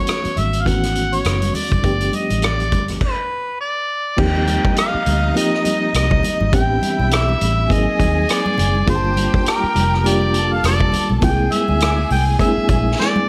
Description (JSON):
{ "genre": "lush 1970s-style soul", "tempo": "102 BPM", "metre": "4/4", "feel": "swing 58% on 16ths", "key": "unclear", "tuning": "A4 = 440 Hz", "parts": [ { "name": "mellow harmonica", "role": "melody", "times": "0.0-13.3 s", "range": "Bb4 to G5", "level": "-24 LUFS", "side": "equal", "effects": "none" }, { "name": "reed electric piano", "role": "accompaniment", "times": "0.0-13.3 s", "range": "E3 to A5", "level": "-24 LUFS", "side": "equal", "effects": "fast tremolo" }, { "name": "vintage drum kit", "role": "drums", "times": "0.1-13.2 s", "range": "crash cymbal, hi-hat, kick drum, rim click, snare drum", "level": "-24 LUFS", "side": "equal", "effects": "none" }, { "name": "congas", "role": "percussion", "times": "0.1-13.3 s", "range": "none", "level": "-29 LUFS", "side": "equal", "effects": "none" }, { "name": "vintage muted fingered electric bass", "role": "bass", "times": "0.3-12.9 s", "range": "F1 to Eb2", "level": "-22 LUFS", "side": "equal", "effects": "none" }, { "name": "rich studio violin section", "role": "second line", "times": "4.2-13.3 s", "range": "Eb4 to A5", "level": "-30 LUFS", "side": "equal", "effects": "none" } ], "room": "light reverb, small room ambience", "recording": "none", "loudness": "-18 LUFS", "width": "mono", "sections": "0.0-4.2 A section; 4.2-13.3 B section", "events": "stop 3.0-4.2; drum fill 13.0-13.3", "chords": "0.0 A6; 1.8 G7; 4.2 Eb69; 6.5 Am11; 7.7 Ab9; 8.9 Gm9; 11.2 C7b13", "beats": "0.07 0.66 1.25 | 1.84 2.42 3.01 3.60 | 4.18 4.77 5.36 5.94 | 6.53 7.12 7.70 8.29 | 8.88 9.46 10.05 10.64 | 11.22 11.81 12.40 12.98" }